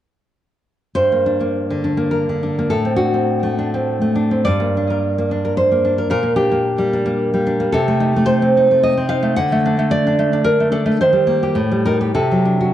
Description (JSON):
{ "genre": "romantic piece for solo classical guitar", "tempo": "89-113 BPM", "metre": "3/4", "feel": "rubato", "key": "G minor", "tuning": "A4 = 440 Hz", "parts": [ { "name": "nylon-string guitar", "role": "solo", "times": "0.9-12.7 s", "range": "G2 to F#5", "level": "-14 LUFS", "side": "equal", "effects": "tape echo" } ], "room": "moderate recital hall reverb, RT60 1.4 s", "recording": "dark, warm production", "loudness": "-15 LUFS", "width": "side -12 dB against mid", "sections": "1.0-12.7 A section", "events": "none", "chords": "1.0 Gm; 2.7 D7/A; 4.5 Gm; 6.1 Gm/Bb; 7.7 Adim/C; 9.4 D; 11.0 Eb; 11.6 Am7b5; 12.1 D7/C" }